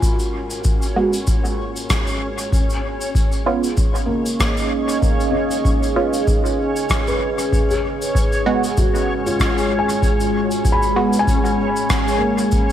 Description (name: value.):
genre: ambient dub.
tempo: 96 BPM.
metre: 4/4.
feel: swing 56% on 16ths.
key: G# dorian.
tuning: A4 = 439 Hz.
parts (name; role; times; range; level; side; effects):
deep dark ambient pad; sustained chords; 0.0-12.7 s; G#3 to E#5; -23 LUFS; right 2 dB; chorus, built-in reverb.
felt-muted upright piano; arpeggios; 0.0-12.7 s; A#3 to B5; -24 LUFS; left 2 dB; dub echo.
cabasa and rim click; drums; 0.0-12.7 s; none; -26 LUFS; left 1 dB; dub echo.
electronic kick drum; drums; 0.0-12.7 s; none; -20 LUFS; equal; none.
backwards swelling texture; texture; 0.0-12.7 s; C#4 to C#5; -27 LUFS; right 1 dB; built-in reverb.
filtered dub chord stab; stabs; 1.0-11.2 s; G#3 to F#4; -24 LUFS; right 3 dB; phaser, cassette tape, dub echo.
room: light reverb.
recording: none.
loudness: -16 LUFS.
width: side -11 dB against mid.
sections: 0.0-12.7 A section.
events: filter sweep on felt piano 0.0-12.7.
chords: 0.0 G#m7; 2.5 C#7; 7.5 G#m7.